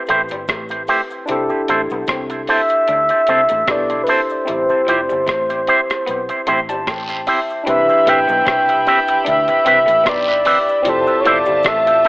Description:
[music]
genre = lovers rock reggae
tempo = 75 BPM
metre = 4/4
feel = swing 55% on 16ths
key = C major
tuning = A4 = 440 Hz
[part]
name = barky tine electric piano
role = accompaniment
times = 0.0-12.1 s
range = C4 to C6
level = -24 LUFS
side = left 1 dB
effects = overdrive
[part]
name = electric guitar through a small old amp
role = riff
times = 0.1-11.9 s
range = E3 to D4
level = -28 LUFS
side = left 2 dB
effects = lush chorus
[part]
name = electric guitar with an envelope filter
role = stabs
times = 0.1-12.1 s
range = A3 to E5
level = -19 LUFS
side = right 1 dB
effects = dub echo
[part]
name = vintage muted fingered electric bass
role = bass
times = 0.1-12.0 s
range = E1 to D2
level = -35 LUFS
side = equal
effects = none
[part]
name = gated 80s digital drum machine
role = drums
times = 0.1-12.1 s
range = hi-hat, kick drum, rim click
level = -23 LUFS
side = equal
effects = overdrive
[part]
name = cabasa and guiro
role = percussion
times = 0.1-12.1 s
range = none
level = -34 LUFS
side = right 1 dB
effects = none
[part]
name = reedy FM lead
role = melody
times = 2.5-12.1 s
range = B4 to G5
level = -15 LUFS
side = equal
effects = chorus, dub echo
[part]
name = clear studio violin section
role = second line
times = 7.7-12.1 s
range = F4 to B5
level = -24 LUFS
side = equal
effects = none
[sound]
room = moderate plate reverb, RT60 1.7 s, digital ambience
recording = telephone sound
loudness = -13 LUFS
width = side -22 dB against mid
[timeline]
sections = 0.0-7.7 A section; 7.7-12.1 B section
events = tine electric piano fill 6.1-7.7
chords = 0.0 Am7; 1.3 C6; 4.5 Am7; 7.7 Cmaj7; 10.9 Fmaj7

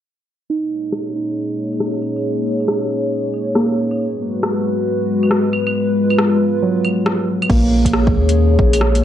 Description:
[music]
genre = future garage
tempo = 137 BPM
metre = 4/4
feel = swing 63% on 16ths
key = Bb phrygian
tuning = A4 = 440 Hz
[part]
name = muted felt-like synth keys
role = accompaniment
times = 0.5-9.0 s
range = Gb3 to Eb4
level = -21 LUFS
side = right 2 dB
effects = chorus, sidechain pumping, low-pass filter, tape echo
[part]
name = dark analog pad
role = sustained chords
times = 0.5-9.0 s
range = Ab3 to Db5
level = -18 LUFS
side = left 1 dB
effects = chorus, sidechain pumping
[part]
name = deep house drum kit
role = drums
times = 0.9-9.0 s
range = claves, crash cymbal, hi-hat, rim click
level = -22 LUFS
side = left 1 dB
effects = overdrive, vintage 12-bit sampler grit
[part]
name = soft dub sub bass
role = bass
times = 7.5-9.0 s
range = Bb1 to Eb2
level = -15 LUFS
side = equal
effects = sidechain pumping
[part]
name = electronic kick drum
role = drums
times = 7.5-8.7 s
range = none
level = -17 LUFS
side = equal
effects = overdrive, vintage 12-bit sampler grit
[sound]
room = light reverb, digital ambience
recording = dry, gritty hardware recording, transformer saturation, low-pass filter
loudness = -15 LUFS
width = side -11 dB against mid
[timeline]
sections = 0.5-7.5 A section; 7.5-9.0 B section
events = filter sweep on synth keys 0.5-7.5; filter sweep 0.5-7.5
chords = 0.5 Bbm7; 4.0 Abm7; 7.5 Bbm7

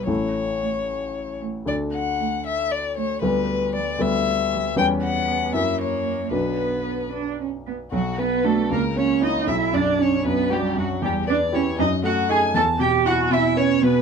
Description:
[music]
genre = quick classical-period movement for piano quartet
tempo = 77 BPM (dotted quarters)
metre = 6/8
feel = straight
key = B minor from 4.8 s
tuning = A4 = 440 Hz
[part]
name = warm violin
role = melody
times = 0.0-14.0 s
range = F#4 to A5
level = -26 LUFS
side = left 6 dB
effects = none
[part]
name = warm cello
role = second line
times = 0.0-14.0 s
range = F#3 to A4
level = -24 LUFS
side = right 8 dB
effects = none
[part]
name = clear grand piano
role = accompaniment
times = 0.0-14.0 s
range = A1 to D5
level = -24 LUFS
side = left 1 dB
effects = none
[part]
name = rich violin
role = second line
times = 7.9-14.0 s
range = F#4 to A5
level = -28 LUFS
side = left 2 dB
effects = none
[sound]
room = moderate studio ambience, RT60 0.5 s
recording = dark, warm production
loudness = -20 LUFS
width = side -6 dB against mid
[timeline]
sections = 0.0-7.9 A section; 7.9-14.0 B section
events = none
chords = 0.1 A; 1.7 D; 3.2 Em7/D; 4.8 C#m7b5/E; 5.6 F#7; 6.3 Bm; 8.7 A#dim/C#; 9.5 Bm; 11.0 Em; 11.8 D#dim/F#; 12.6 E5

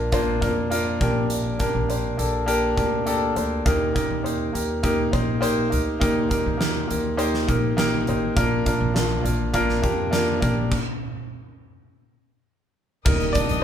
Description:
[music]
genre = piano-driven pop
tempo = 102 BPM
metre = 4/4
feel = straight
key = unclear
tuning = A4 = 441 Hz
[part]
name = clear concert grand piano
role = accompaniment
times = 0.0-13.6 s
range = Bb2 to D5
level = -22 LUFS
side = equal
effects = none
[part]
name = upright bass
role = bass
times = 0.0-13.6 s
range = A1 to F2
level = -27 LUFS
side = equal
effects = none
[part]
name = huge arena drum kit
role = drums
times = 0.1-13.6 s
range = crash cymbal, hi-hat, kick drum, snare drum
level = -26 LUFS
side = equal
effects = none
[part]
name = warm studio string section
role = sustained chords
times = 13.1-13.6 s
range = Bb4 to Eb6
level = -29 LUFS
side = left 4 dB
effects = none
[part]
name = impact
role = sound effects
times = 13.1-13.6 s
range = none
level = -30 LUFS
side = right 2 dB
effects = none
[sound]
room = light reverb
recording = band playing live in one room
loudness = -20 LUFS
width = side -9 dB against mid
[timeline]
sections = 0.0-13.1 A section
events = stop 10.7-13.1; impact 13.1-13.6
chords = 0.0 Bb; 1.0 Gm/Bb; 3.7 Eb; 8.4 Bb; 10.4 Gm/Bb; 11.9 N.C.; 13.1 Eb

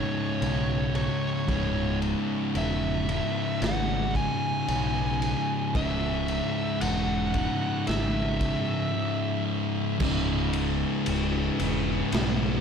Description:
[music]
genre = stoner and doom metal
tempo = 56 BPM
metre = 4/4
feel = straight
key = C# minor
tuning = A4 = 440 Hz
[part]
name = fuzz lead guitar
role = melody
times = 0.0-9.4 s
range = C#5 to G#5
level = -32 LUFS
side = equal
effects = distortion, ping-pong delay
[part]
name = thick fuzz guitar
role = riff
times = 0.0-12.6 s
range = C#2 to C#3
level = -29 LUFS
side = left 9 dB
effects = distortion
[part]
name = thick fuzz guitar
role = riff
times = 0.0-12.6 s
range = C#2 to C#3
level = -31 LUFS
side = right 15 dB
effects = distortion
[part]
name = growling picked electric bass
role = bass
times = 0.4-12.6 s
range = C#1 to B1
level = -30 LUFS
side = equal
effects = overdrive
[part]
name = raw garage drum kit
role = drums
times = 0.4-12.4 s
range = crash cymbal, kick drum, ride cymbal, snare drum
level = -33 LUFS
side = equal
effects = none
[sound]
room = small room ambience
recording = none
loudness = -24 LUFS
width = side -7 dB against mid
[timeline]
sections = 0.0-10.0 A section; 10.0-12.6 B section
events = none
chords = 0.0 C#m

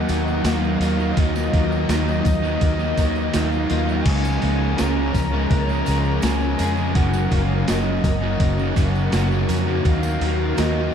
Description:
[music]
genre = rock, shoegaze and dream pop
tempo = 83 BPM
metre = 4/4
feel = straight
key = unclear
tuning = A4 = 442 Hz
[part]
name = reedy FM lead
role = melody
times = 0.0-10.9 s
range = D#5 to A#5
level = -30 LUFS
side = left 1 dB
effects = chorus, analog delay
[part]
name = string machine, violas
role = sustained chords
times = 0.0-10.9 s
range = F#3 to D#5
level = -29 LUFS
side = equal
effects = phaser, ensemble chorus
[part]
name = picked twelve-string acoustic guitar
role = arpeggios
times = 0.0-10.9 s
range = D#3 to G#4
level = -31 LUFS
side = left 6 dB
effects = ensemble chorus, analog delay
[part]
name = overdriven semi-hollow guitar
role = riff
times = 0.0-10.9 s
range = F#2 to D#4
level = -25 LUFS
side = right 6 dB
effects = reverse reverb
[part]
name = thick fuzz guitar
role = riff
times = 0.0-10.9 s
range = F#2 to D#4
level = -26 LUFS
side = left 8 dB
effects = distortion, wide subtle chorus
[part]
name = vintage muted fingered electric bass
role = bass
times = 0.0-10.9 s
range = F#1 to E#2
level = -23 LUFS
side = equal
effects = none
[part]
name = gated 80s digital drum machine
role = drums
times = 0.1-10.8 s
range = crash cymbal, hi-hat, kick drum, snare drum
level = -24 LUFS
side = equal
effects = gated reverb, gated reverb snare
[part]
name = tambourine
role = percussion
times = 0.1-10.8 s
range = none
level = -41 LUFS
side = right 10 dB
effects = none
[sound]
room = wet huge ambient reverb, RT60 7.9 s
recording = dreamy mix soaked in reverb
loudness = -18 LUFS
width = side -8 dB against mid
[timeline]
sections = 0.0-10.9 A section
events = none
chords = 0.0 D#madd9; 4.1 C#6; 7.0 F#6; 9.9 D#madd9

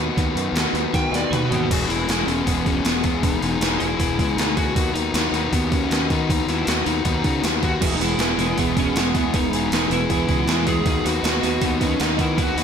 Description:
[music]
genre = indie rock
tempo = 157 BPM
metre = 4/4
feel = straight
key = E major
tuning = A4 = 442 Hz
[part]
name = overdriven semi-hollow guitar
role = riff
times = 0.0-12.6 s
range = E2 to G#4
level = -24 LUFS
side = left 8 dB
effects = slapback echo
[part]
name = twelve-string electric guitar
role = riff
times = 0.0-1.7, 7.8-12.6 s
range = E2 to G#4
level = -26 LUFS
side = right 7 dB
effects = analog chorus, slapback echo, analog delay
[part]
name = fuzz fingered electric bass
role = bass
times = 0.0-12.6 s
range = E1 to D#3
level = -26 LUFS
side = right 1 dB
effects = overdrive
[part]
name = gated 80s digital drum machine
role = drums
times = 0.2-12.6 s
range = crash cymbal, hi-hat, kick drum, snare drum, toms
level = -23 LUFS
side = right 1 dB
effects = gated reverb, gated reverb snare, overdrive
[part]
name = fuzz lead guitar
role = melody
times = 0.9-12.6 s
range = B3 to G5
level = -25 LUFS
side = right 1 dB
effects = distortion, slapback echo, analog delay
[sound]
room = moderate lush hall reverb, RT60 1.8 s, digital ambience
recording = big arena sound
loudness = -18 LUFS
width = side -7 dB against mid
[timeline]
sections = 0.0-1.7 A section; 1.7-12.6 B section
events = lead electric guitar solo 0.0-1.7; drum fill 0.9-1.7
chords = 0.0 B/D#; 1.7 E; 4.8 B/D#; 7.8 E; 10.9 B/D#

